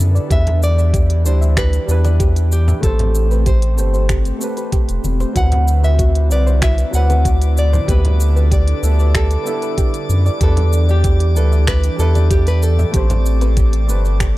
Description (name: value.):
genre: sunset chillout.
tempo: 95 BPM.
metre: 4/4.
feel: straight.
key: A dorian.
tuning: A4 = 438 Hz.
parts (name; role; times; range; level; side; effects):
warm grand piano; accompaniment; 0.0-14.4 s; F#3 to D5; -27 LUFS; equal; auto-pan, tape echo.
airy breathy pad; sustained chords; 0.0-14.4 s; D3 to B4; -26 LUFS; equal; chorus.
round analog bass; bass; 0.0-14.4 s; E1 to F#2; -14 LUFS; equal; none.
smooth R&B drum kit; drums; 0.0-14.3 s; cabasa, finger snaps, hi-hat; -26 LUFS; equal; none.
soft round pluck; arpeggios; 0.2-14.4 s; F#4 to E5; -30 LUFS; right 3 dB; chorus, tape echo.
nylon-string guitar; melody; 0.3-14.4 s; G4 to F#5; -24 LUFS; equal; tape echo.
electronic kick drum; drums; 0.3-14.3 s; none; -17 LUFS; equal; none.
congas and bongos; percussion; 0.3-13.5 s; none; -26 LUFS; left 1 dB; none.
drifting glass-harmonics texture; texture; 6.3-14.4 s; D5 to D6; -31 LUFS; left 1 dB; chorus, built-in reverb.
room: little or no reverb.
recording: dry, gritty hardware recording.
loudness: -13 LUFS.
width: side -17 dB against mid.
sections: 0.0-14.4 A section.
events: none.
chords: 0.3 Em7; 2.8 Am9; 5.4 D13; 7.9 G69/D; 10.4 Em7; 12.9 Am9.